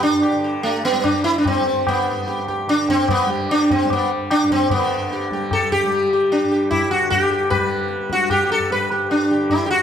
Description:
indian classical, Hindustani; 149 BPM; 7/4; straight; G raga bilaval; A4 = 440 Hz
sitar; melody; 0.0-9.8 s; A3 to B4; -17 LUFS; equal
tanpura; drone; 0.0-9.8 s; G2 to G3; -29 LUFS; left 1 dB
tabla; percussion; 0.2-9.6 s; -25 LUFS; left 3 dB
moderate recital hall reverb, RT60 1.6 s; -16 LUFS; side -8 dB against mid
0.0-4.7 A section; 4.7-9.8 B section
speeding up 0.0-9.8
0.23 0.64 1.05 1.46 | 1.87 2.27 2.68 3.09 3.49 3.90 4.30 | 4.71 5.11 5.51 5.91 6.32 6.71 7.12 | 7.51 7.91 8.31 8.71 9.10 9.50

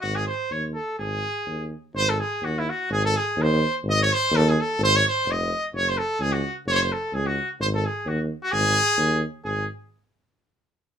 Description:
balkan folk; 128 BPM; 2/4; swing 54% on 16ths; A4 = 440 Hz
bright trumpet; melody; 0.0-9.7 s; E4 to D#5; -23 LUFS; equal
mellow tuba; bass; 0.0-9.7 s; E#1 to D#2; -25 LUFS; equal
moderate small room reverb, RT60 0.5 s; minimal, uncompressed stereo recording; -21 LUFS; side -8 dB against mid
0.0-1.9 A section; 1.9-9.4 B section
speeding up 0.0-10.4
0.0 G#5; 5.7 F#5; 7.6 G#5; 9.4 N.C.
| 0.03 0.51 | 0.99 1.47 | 1.94 2.42 | 2.90 3.37 | 3.84 4.32 | 4.79 5.26 | 5.73 6.20 | 6.66 7.13 | 7.59 8.06 | 8.52 8.98 | 9.44

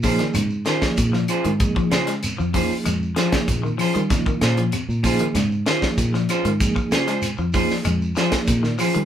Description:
afrobeat; 96 BPM; 4/4; straight; Bb minor; A4 = 438 Hz
mellow reed electric piano; accompaniment; 0.0-8.6 s; F3 to Ab4; -25 LUFS; right 2 dB; fast tremolo
electric guitar at the edge of break-up; arpeggios; 0.0-9.1 s; C3 to Ab3; -26 LUFS; left 4 dB
semi-hollow electric guitar; stabs; 0.0-9.0 s; Db4 to C5; -24 LUFS; right 3 dB
fingered electric bass; bass; 0.0-9.1 s; F2 to G3; -23 LUFS; equal
tight funk drum kit; drums; 0.0-9.1 s; hi-hat, kick drum, snare drum; -24 LUFS; equal
shekere; percussion; 0.0-9.1 s; -31 LUFS; right 1 dB
claves; percussion; 0.3-9.0 s; -34 LUFS; left 5 dB
moderate studio ambience, RT60 0.5 s; band playing live in one room; -18 LUFS; side -10 dB against mid
0.0-9.1 A section
0.0 Bbm9
0.36 0.98 | 1.61 2.23 2.86 3.48 | 4.11 4.73 5.36 5.98 | 6.61 7.23 7.85 8.48

